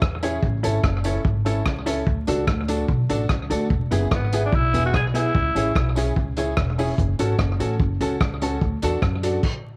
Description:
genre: ska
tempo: 147 BPM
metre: 4/4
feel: straight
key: unclear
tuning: A4 = 440 Hz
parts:
  - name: upright bass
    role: bass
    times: 0.0-9.4 s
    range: E1 to F#2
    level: -26 LUFS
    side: equal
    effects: none
  - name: vintage drum kit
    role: drums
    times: 0.0-9.5 s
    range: crash cymbal, hi-hat, kick drum, rim click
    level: -27 LUFS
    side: equal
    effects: none
  - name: hollow-body jazz guitar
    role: accompaniment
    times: 0.2-9.4 s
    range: B3 to C#5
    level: -32 LUFS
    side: equal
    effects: none
  - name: warm upright piano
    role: stabs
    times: 0.2-9.4 s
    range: B3 to A4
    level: -30 LUFS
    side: equal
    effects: none
  - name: tambourine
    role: percussion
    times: 0.2-9.3 s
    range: none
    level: -46 LUFS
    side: equal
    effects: slapback echo
  - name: raspy tenor saxophone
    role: melody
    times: 4.1-5.9 s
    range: B3 to G#4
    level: -27 LUFS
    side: equal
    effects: none
room: light reverb, small room ambience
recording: vinyl crackle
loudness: -22 LUFS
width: mono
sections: 0.0-9.8 A section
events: stop 9.4-9.8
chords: 0.4 A; 2.1 D; 3.7 E; 5.3 C#m; 7.0 F#m; 8.6 D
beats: 0.02 | 0.43 0.84 1.25 1.66 | 2.07 2.48 2.89 3.29 | 3.71 4.11 4.52 4.93 | 5.34 5.75 6.16 6.57 | 6.98 7.39 7.79 8.20 | 8.61 9.02 9.43

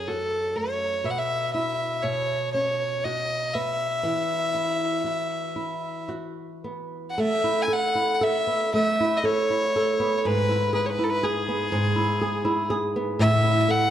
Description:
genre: celtic folk, Celtic slow air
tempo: 54-62 BPM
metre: 3/4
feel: rubato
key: E major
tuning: A4 = 439 Hz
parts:
  - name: clear fiddle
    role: melody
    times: 0.0-13.9 s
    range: G#4 to G#5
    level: -25 LUFS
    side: left 1 dB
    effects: none
  - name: flamenco guitar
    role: accompaniment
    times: 0.0-13.9 s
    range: F#2 to A4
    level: -26 LUFS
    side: right 1 dB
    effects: none
room: moderate concert hall reverb, RT60 1.9 s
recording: dark, warm production, lossy compression artefacts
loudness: -22 LUFS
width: side -10 dB against mid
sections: 0.0-7.2 A section; 7.2-13.9 B section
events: none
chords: 0.0 F#m; 1.0 Bsus4; 2.0 Bsus2; 7.2 Asus2; 10.2 E/G#; 13.2 A5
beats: 0.07 | 1.04 2.03 3.03 | 4.03 5.03 6.09 | 7.17 8.22 9.25 | 10.25 11.22 12.20 | 13.19

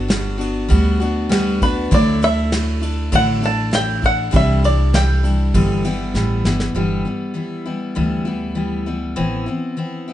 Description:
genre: acoustic folk duo or small band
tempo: 99 BPM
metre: 4/4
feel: straight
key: G major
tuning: A4 = 443 Hz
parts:
  - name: bluegrass banjo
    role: melody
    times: 0.0-6.4 s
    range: B4 to A5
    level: -20 LUFS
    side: equal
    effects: none
  - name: picked steel-string acoustic guitar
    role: accompaniment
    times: 0.0-10.1 s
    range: G2 to F#4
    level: -21 LUFS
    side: left 2 dB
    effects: none
  - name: upright bass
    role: bass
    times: 0.0-9.5 s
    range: G1 to D2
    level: -19 LUFS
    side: equal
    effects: none
  - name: soft brush drum kit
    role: drums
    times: 0.1-6.7 s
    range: kick drum, ride cymbal, snare drum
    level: -22 LUFS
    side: equal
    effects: none
room: light reverb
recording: nothing above 10.3 kHz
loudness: -16 LUFS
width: side -12 dB against mid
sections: 0.0-6.8 A section; 6.8-10.1 B section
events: drum fill 6.1-6.8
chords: 0.0 Gmaj7; 1.9 Dadd9; 4.3 Cadd9; 5.5 G6; 9.2 Amadd9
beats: 0.10 0.71 1.31 | 1.92 2.52 3.12 3.73 | 4.33 4.94 5.54 6.15 | 6.75 7.36 7.96 8.57 | 9.17 9.78

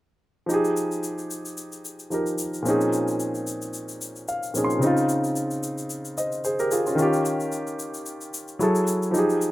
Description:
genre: amapiano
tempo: 111 BPM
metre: 4/4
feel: swing 55% on 16ths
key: F minor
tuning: A4 = 439 Hz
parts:
  - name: warm concert grand piano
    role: accompaniment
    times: 0.5-9.5 s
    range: Bb2 to C6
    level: -23 LUFS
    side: equal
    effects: none
  - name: shaker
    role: drums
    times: 0.5-9.5 s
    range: none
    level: -35 LUFS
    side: left 3 dB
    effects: none
room: moderate studio reverb, RT60 0.5 s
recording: rough home demo mix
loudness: -23 LUFS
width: side -16 dB against mid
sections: 0.5-9.5 A section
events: grand piano fill 4.0-4.8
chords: 0.5 Fm9; 2.7 Bbm11; 4.8 Dbmaj9; 7.0 Eb9; 8.6 Gbm9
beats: | 0.50 1.04 1.58 2.12 | 2.66 3.20 3.74 4.28 | 4.82 5.36 5.90 6.44 | 6.98 7.52 8.06 8.61 | 9.14

